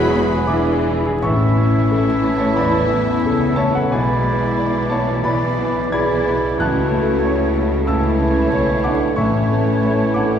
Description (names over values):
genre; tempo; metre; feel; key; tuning
classical, romantic movement for piano and orchestra; 90 BPM; 4/4; uneven beats, rubato; A major; A4 = 440 Hz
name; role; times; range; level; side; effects
clear concert grand piano; melody; 0.0-10.4 s; A1 to G#6; -20 LUFS; left 1 dB; none
warm studio violin section; melody; 0.0-10.4 s; C#5 to B5; -36 LUFS; left 1 dB; none
bright clarinet; second line; 0.0-10.4 s; E4 to G#4; -30 LUFS; left 1 dB; none
clear oboe; second line; 0.0-10.4 s; B4 to E5; -29 LUFS; right 1 dB; none
mellow silver concert flute; second line; 0.0-10.4 s; A5 to B5; -30 LUFS; right 2 dB; none
warm studio violin section; second line; 0.0-10.4 s; E4 to G#4; -28 LUFS; left 1 dB; none
mellow bassoon; accompaniment; 0.0-10.4 s; E3 to B3; -26 LUFS; right 3 dB; none
rich studio viola section; accompaniment; 0.0-10.4 s; E3 to A3; -26 LUFS; equal; none
mellow French horn section; sustained chords; 0.0-10.4 s; F#3 to G#4; -23 LUFS; left 3 dB; none
clear trumpet section; stabs; 0.0-0.9 s; B4; -31 LUFS; right 1 dB; none
rich studio cello section; bass; 0.0-10.4 s; E2 to C#3; -26 LUFS; right 2 dB; none
rich studio double bass section; bass; 0.0-10.4 s; E1 to C#2; -25 LUFS; right 1 dB; none
timpani; percussion; 9.2-10.1 s; none; barely audible; none; none
room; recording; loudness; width
wet concert hall reverb, RT60 2.0 s; heard from further back in the room, vinyl crackle; -15 LUFS; side -8 dB against mid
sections
0.0-1.2 A section; 1.2-10.4 B section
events
none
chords
0.0 E; 1.2 A; 3.9 E7/B; 6.6 A/C#; 9.2 A